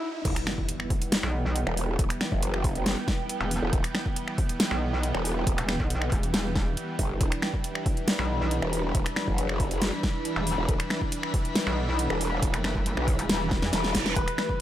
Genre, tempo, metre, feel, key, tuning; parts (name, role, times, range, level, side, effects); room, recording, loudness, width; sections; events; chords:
heavy wobble dubstep; 138 BPM; 4/4; half-time; E minor; A4 = 436 Hz
bright grand piano; melody; 0.0-0.1, 14.2-14.6 s; B4; -34 LUFS; left 1 dB; tape echo
riser, impact and reverse cymbal; sound effects; 0.0-2.0, 13.6-14.2 s; -36 LUFS; right 1 dB
supersaw chords; sustained chords; 0.3-14.6 s; E3 to D4; -34 LUFS; right 1 dB; sidechain pumping
growl bass; bass; 0.3-14.3 s; E1 to B1; -29 LUFS; equal; chorus, overdrive
dubstep drum kit; drums; 0.3-14.5 s; crash cymbal, finger snaps, hi-hat, snare drum; -30 LUFS; equal; studio reverb
electronic kick drum; drums; 0.3-14.6 s; -28 LUFS; equal; studio reverb
airy breathy pad; texture; 0.8-14.6 s; E4 to B5; -34 LUFS; left 1 dB; chorus, phaser, sidechain pumping
metallic wobble bass; bass; 1.2-13.7 s; E1 to E2; -28 LUFS; equal; chorus, overdrive
light reverb, digital ambience; high-pass filter; -24 LUFS; side -12 dB against mid
0.3-14.6 A section
break 0.0; riser 0.0; drop 0.3-14.6; impact 0.3-2.0; drum fill 13.5-14.2; reverse cymbal 13.6-14.2
0.3 Em